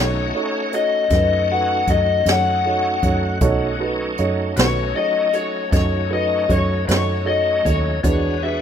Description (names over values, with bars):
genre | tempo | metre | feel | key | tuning
slow blues | 52 BPM (dotted quarters) | 12/8 | straight | B mixolydian | A4 = 440 Hz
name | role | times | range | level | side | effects
overdriven slide guitar | melody | 0.0-8.6 s | C#5 to F#5 | -20 LUFS | left 6 dB | none
dark baby grand piano | accompaniment | 0.0-8.6 s | D4 to D#5 | -24 LUFS | right 6 dB | none
bright tonewheel organ | sustained chords | 0.0-8.6 s | F#3 to F#4 | -27 LUFS | equal | slow rotary speaker, chorus vibrato
vintage muted fingered electric bass | bass | 0.0-8.6 s | B1 to F#2 | -22 LUFS | equal | none
jazz brush drum kit | drums | 0.7-8.2 s | hi-hat, kick drum, snare drum | -22 LUFS | equal | none
room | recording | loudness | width
small room ambience | rough home demo mix | -16 LUFS | side -8 dB against mid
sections
0.0-8.6 A section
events
none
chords
0.0 B7; 8.0 E7